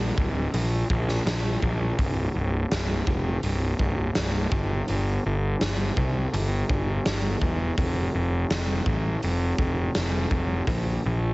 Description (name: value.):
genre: quiet-loud alternative rock.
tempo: 83 BPM.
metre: 4/4.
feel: straight.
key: unclear.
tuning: A4 = 436 Hz.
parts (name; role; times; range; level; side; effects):
fuzz picked electric bass; bass; 0.0-11.3 s; C1 to C2; -24 LUFS; equal; overdrive.
raw garage drum kit; drums; 0.2-10.8 s; hi-hat, kick drum, snare drum; -28 LUFS; equal; none.
room: little or no reverb.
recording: heavily compressed radio sound, multiband compression, nothing above 8.0 kHz.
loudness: -23 LUFS.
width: side -22 dB against mid.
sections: 0.0-11.3 A section.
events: none.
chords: none.